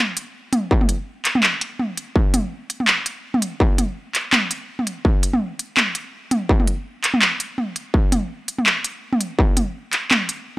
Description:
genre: drum and bass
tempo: 166 BPM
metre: 4/4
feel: swing 56% on 16ths, half-time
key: none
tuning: none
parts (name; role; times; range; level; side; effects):
- industrial drum kit; drums; 0.2-10.4 s; handclaps, hi-hat, toms; -18 LUFS; equal; overdrive, small room reverb
- electronic kick drum; drums; 0.7-9.5 s; none; -17 LUFS; equal; distortion, overdrive, small room reverb
room: digital ambience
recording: dry, gritty hardware recording, transformer saturation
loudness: -18 LUFS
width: side -19 dB against mid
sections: 0.0-10.6 A section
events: none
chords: none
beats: 0.35 | 0.71 1.07 1.44 1.80 | 2.16 2.52 2.88 3.24 | 3.60 3.97 4.33 4.69 | 5.05 5.41 5.77 6.13 | 6.50 6.86 7.22 7.58 | 7.94 8.30 8.66 9.03 | 9.39 9.75 10.11

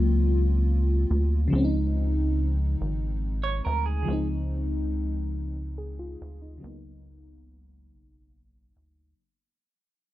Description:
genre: R&B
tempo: 47 BPM (dotted quarters)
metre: 6/8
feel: straight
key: Db major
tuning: A4 = 441 Hz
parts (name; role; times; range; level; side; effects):
- FM electric piano with soft pad layer; accompaniment; 0.0-9.2 s; Db3 to Ab4; -30 LUFS; left 1 dB; chorus, low-pass filter
- rubbery square bass; bass; 0.0-9.1 s; Ab1 to D2; -25 LUFS; equal; none
- clean electric guitar; second line; 3.4-4.3 s; Ab4 to Db5; -31 LUFS; right 9 dB; tremolo
room: little or no reverb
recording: dry, close 1970s-style studio recording, faint mains hum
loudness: -24 LUFS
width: side -16 dB against mid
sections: 0.0-9.2 A section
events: fade-out 0.0-9.2; filter sweep on FM electric piano 0.0-9.2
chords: 0.0 Ebm13/Db (rootless); 1.5 Dbmaj7; 4.1 Dbmaj9; 6.6 Cbmaj7/Db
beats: 0.24 | 1.52 2.79 | 4.07 5.35 | 6.62 7.90

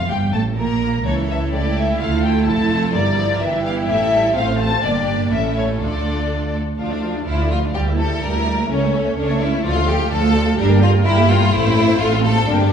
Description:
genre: quick classical-period movement for string orchestra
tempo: 126 BPM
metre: 2/4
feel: straight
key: D minor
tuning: A4 = 442 Hz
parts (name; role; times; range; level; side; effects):
- rich symphonic violin section; melody; 0.0-12.7 s; C5 to Bb5; -24 LUFS; left 3 dB; none
- bright symphonic violin section; second line; 0.0-12.7 s; C#4 to D5; -22 LUFS; left 3 dB; none
- rich symphonic cello section; bass; 0.0-12.7 s; C#2 to D3; -22 LUFS; right 2 dB; none
- rich symphonic double bass section; bass; 0.0-12.7 s; F1 to D2; -22 LUFS; right 2 dB; none
- rich symphonic viola section; accompaniment; 0.1-12.7 s; E3 to C#5; -21 LUFS; right 2 dB; none
room: wet recital hall reverb, RT60 1.3 s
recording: recorded in a church or concert hall, nothing above 10.8 kHz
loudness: -15 LUFS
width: side -7 dB against mid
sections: 0.0-6.8 A section; 6.8-12.7 A section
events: none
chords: 0.1 Gmadd9; 1.1 A/C#; 2.0 Dm; 2.9 Gm; 3.4 Em/G; 3.9 A5; 4.4 F/A; 4.8 Gm; 5.3 A; 5.8 Dm; 7.8 Em7b5/D; 8.7 A/C#; 9.7 Dm; 10.6 Gm; 11.5 Am; 12.0 F/A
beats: | 0.09 0.57 | 1.05 1.53 | 2.01 2.48 | 2.95 3.42 | 3.89 4.36 | 4.83 5.32 | 5.80 6.29 | 6.78 7.27 | 7.75 8.23 | 8.71 9.18 | 9.65 10.12 | 10.59 11.06 | 11.53 12.00 | 12.47

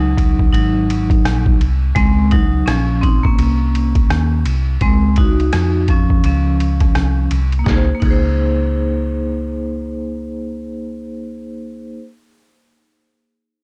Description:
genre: hip hop, jazz-hop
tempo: 84 BPM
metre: 4/4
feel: swing 62% on 16ths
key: Db major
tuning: A4 = 440 Hz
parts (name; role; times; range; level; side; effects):
- vibraphone with hard mallets; accompaniment; 0.0-12.0 s; F3 to C5; -22 LUFS; equal; none
- hollow-body short-scale fingered electric bass; bass; 0.0-12.0 s; Ab1 to F2; -20 LUFS; equal; transformer saturation
- trip hop sampler-style drum kit; drums; 0.2-8.3 s; crash cymbal, hi-hat, kick drum, ride cymbal, rim click, snare drum; -20 LUFS; equal; none
room: little or no reverb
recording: dry, gritty hardware recording, transformer saturation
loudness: -16 LUFS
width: mono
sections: 0.0-7.7 A section; 7.7-10.5 B section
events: vibraphone solo 0.0-7.7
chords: 0.0 Ebm7; 0.5 Ab7; 2.0 Dbmaj7; 7.7 Db5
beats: 0.53 1.24 | 1.95 2.67 3.38 4.10 | 4.81 5.53 6.24 6.95 | 7.67 8.38 9.10 9.81

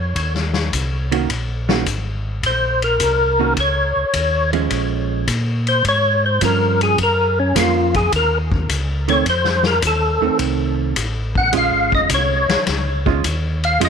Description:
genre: soul jazz organ trio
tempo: 106 BPM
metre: 4/4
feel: swing 69% on 8ths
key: Bb minor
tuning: A4 = 440 Hz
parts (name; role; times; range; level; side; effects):
- mellow tonewheel organ; bass; 0.0-13.9 s; F1 to Bb2; -21 LUFS; equal; slow rotary speaker
- vintage drum kit; drums; 0.2-13.9 s; hi-hat, kick drum, ride cymbal, snare drum; -23 LUFS; left 4 dB; none
- vintage hollow-body jazz guitar; accompaniment; 1.1-13.9 s; Eb3 to Gb4; -21 LUFS; right 16 dB; none
- percussive tonewheel organ; melody; 2.5-13.9 s; Db4 to Gb5; -18 LUFS; left 2 dB; slow rotary speaker, chorus vibrato, tape echo
room: studio ambience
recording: 1960s-style stereo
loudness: -15 LUFS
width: side -6 dB against mid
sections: 0.0-13.9 A section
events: tonewheel organ solo 0.0-13.9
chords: 0.0 Eb7(no3); 4.7 Bbm7; 7.0 Gbmaj7; 9.3 F7; 11.5 Bbm7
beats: | 0.16 0.73 1.29 1.86 | 2.43 3.00 3.57 4.14 | 4.71 5.28 5.84 6.41 | 6.98 7.55 8.12 8.69 | 9.26 9.82 10.39 10.96 | 11.53 12.10 12.67 13.24 | 13.80

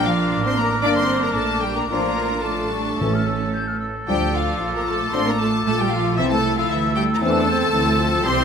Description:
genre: quick classical-period movement for symphony orchestra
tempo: 113 BPM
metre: 4/4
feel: uneven beats, rubato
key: D minor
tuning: A4 = 439 Hz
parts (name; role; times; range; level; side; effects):
- clear studio violin section; melody; 0.0-8.4 s; E5 to D6; -26 LUFS; left 4 dB; none
- silver concert flute; second line; 0.0-8.4 s; C#6 to G6; -28 LUFS; left 3 dB; none
- warm oboe; second line; 0.0-8.4 s; F4 to Bb4; -28 LUFS; right 1 dB; none
- rich chamber viola section; accompaniment; 0.0-8.4 s; E3 to F4; -25 LUFS; right 1 dB; none
- rich chamber double bass section; bass; 0.0-8.4 s; G1 to E2; -27 LUFS; right 4 dB; none
- rich studio cello section; bass; 0.0-8.4 s; E3 to D4; -26 LUFS; right 3 dB; none
- rich chamber violin section; second line; 0.1-8.4 s; E4 to D5; -28 LUFS; equal; none
- dark French horn section; sustained chords; 0.8-8.4 s; E3 to D4; -27 LUFS; left 5 dB; none
- timpani; percussion; 3.0-3.8 s; A2; -27 LUFS; right 2 dB; none
room: moderate scoring stage reverb, RT60 1.7 s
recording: none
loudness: -18 LUFS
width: side -7 dB against mid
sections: 0.0-8.4 A section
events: none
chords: 0.0 Bb; 0.8 Gm; 1.9 Dm/A; 3.0 A; 4.1 Dm; 6.2 Am/C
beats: 0.32 0.84 1.37 | 1.91 2.46 3.01 3.55 | 4.09 4.62 5.14 5.66 | 6.18 6.70 7.22 7.74 | 8.27

